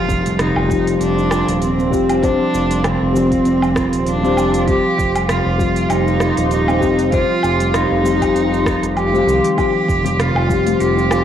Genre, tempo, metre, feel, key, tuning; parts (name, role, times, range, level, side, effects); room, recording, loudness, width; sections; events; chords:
organic downtempo; 98 BPM; 4/4; swing 56% on 16ths; A4 = 440 Hz
clear cello; melody; 0.0-11.2 s; C4 to G4; -19 LUFS; right 1 dB; cassette tape, tape echo
warbly tape-like pad; sustained chords; 0.0-11.2 s; G4 to C6; -25 LUFS; right 2 dB; chorus, built-in reverb, sidechain pumping
handpan; arpeggios; 0.0-11.2 s; C3 to F4; -21 LUFS; right 2 dB; tape echo
impact; sound effects; 0.0-2.2 s; -29 LUFS; right 1 dB
smooth synth bass; bass; 0.1-11.2 s; Eb1 to C2; -21 LUFS; right 1 dB; sidechain pumping
electronic kick drum; drums; 0.1-10.6 s; -22 LUFS; right 1 dB
organic electronic drum kit; drums; 0.1-11.2 s; hi-hat, rim click, shaker, woodblock; -24 LUFS; right 1 dB
felt-muted upright piano; accompaniment; 0.7-11.2 s; G3 to C5; -21 LUFS; left 6 dB; sidechain pumping
congas and bongos; percussion; 10.0-11.1 s; -27 LUFS; left 8 dB
wet lush hall reverb, RT60 2.0 s, studio reverb; home recording on cassette; -14 LUFS; side -9 dB against mid
0.0-11.2 A section
impact 0.0-2.2
0.0 Fsus2